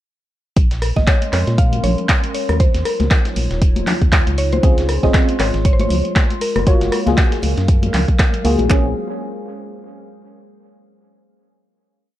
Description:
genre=deep house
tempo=118 BPM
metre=4/4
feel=swing 57% on 16ths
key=Bb minor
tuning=A4 = 440 Hz
part: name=warbly tape-like pad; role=sustained chords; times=1.2-8.9 s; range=Gb3 to C6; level=-28 LUFS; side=right 1 dB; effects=chorus, built-in reverb, sidechain pumping
part: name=organ-like FM bass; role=bass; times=0.6-8.9 s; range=Eb1 to Bb2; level=-19 LUFS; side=equal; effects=sidechain pumping
part: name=deep house drum kit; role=drums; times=0.6-8.8 s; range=handclaps, kick drum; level=-14 LUFS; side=equal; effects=none
part: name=dusty soul sampler-style drum kit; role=drums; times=0.6-8.6 s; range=hi-hat, snare drum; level=-33 LUFS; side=equal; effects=sidechain pumping on hats, high-pass filter on hats, high-pass filter on snare
part: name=punchy analog drum machine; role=drums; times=0.6-8.7 s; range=handclaps, hi-hat, rim click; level=-22 LUFS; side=equal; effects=none
part: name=mallet-like synth pluck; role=melody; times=1.0-8.2 s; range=Bb4 to F5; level=-24 LUFS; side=equal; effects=chorus, tape echo
part: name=congas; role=percussion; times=1.0-8.7 s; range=none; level=-25 LUFS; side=left 4 dB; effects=none
part: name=deep mellow chord stab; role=stabs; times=4.6-8.9 s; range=Bb3 to Db5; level=-21 LUFS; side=left 1 dB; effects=chorus, cassette tape, sidechain pumping, tape echo
room=digital ambience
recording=dry, gritty hardware recording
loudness=-14 LUFS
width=side -14 dB against mid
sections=0.6-8.7 groove; 8.7-10.7 final chord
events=none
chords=0.6 Bbm9; 2.6 Ebm9; 4.4 Dbmaj7; 6.7 Gbmaj9; 8.7 Bbm9

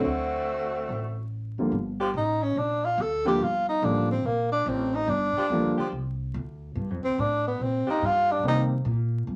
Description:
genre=jazz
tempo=143 BPM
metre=4/4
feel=swing 66% on 8ths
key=G minor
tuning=A4 = 440 Hz
part: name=bright saxophone section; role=melody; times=0.0-1.3 s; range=D3 to F#4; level=-31 LUFS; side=equal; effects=none
part: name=warm grand piano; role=accompaniment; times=0.0-5.8, 8.4-8.7 s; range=D3 to G4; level=-30 LUFS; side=equal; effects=none
part: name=upright bass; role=bass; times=0.0-9.4 s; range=F#1 to C3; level=-33 LUFS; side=equal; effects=none
part: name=bright saxophone section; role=sustained chords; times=2.0-8.4 s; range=F3 to G4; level=-34 LUFS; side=equal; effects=none
part: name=breathy tenor saxophone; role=melody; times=2.2-8.6 s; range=Bb3 to A4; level=-27 LUFS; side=equal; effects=none
room=wet small room reverb, RT60 0.5 s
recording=vinyl crackle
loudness=-27 LUFS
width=mono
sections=0.0-1.7 A section; 1.7-9.4 B section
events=tenor saxophone solo 1.7-9.4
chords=0.1 D7; 1.7 Gm7; 8.4 Cm7

